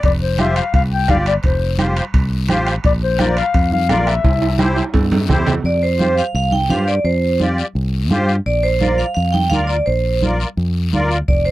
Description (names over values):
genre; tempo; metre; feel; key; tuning
latin, cumbia; 171 BPM; 4/4; straight; unclear; A4 = 440 Hz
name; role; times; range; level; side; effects
musette accordion; accompaniment; 0.0-11.2 s; E4 to D5; -20 LUFS; equal; none
fingered electric bass; bass; 0.0-11.5 s; F1 to G2; -18 LUFS; equal; none
bombo; percussion; 0.0-5.5, 11.3-11.5 s; none; -18 LUFS; equal; none
guiro; percussion; 0.0-11.5 s; none; -32 LUFS; left 12 dB; none
timbales; percussion; 0.0-5.5 s; none; -26 LUFS; right 5 dB; none
breathy clarinet; second line; 0.1-4.6 s; C5 to G5; -19 LUFS; left 6 dB; none
congas; percussion; 0.4-11.1 s; none; -22 LUFS; right 2 dB; none
vibraphone with hard mallets; melody; 5.7-11.5 s; C5 to G5; -18 LUFS; right 3 dB; none
room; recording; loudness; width
little or no reverb; dry, close 1970s-style studio recording; -14 LUFS; side -16 dB against mid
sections
0.0-5.6 A section; 5.6-11.5 B section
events
clarinet solo 0.0-5.6; drum fill 4.2-5.6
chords
0.0 Fsus2; 2.8 Bb; 4.2 C; 5.6 Fsus2; 8.5 Bb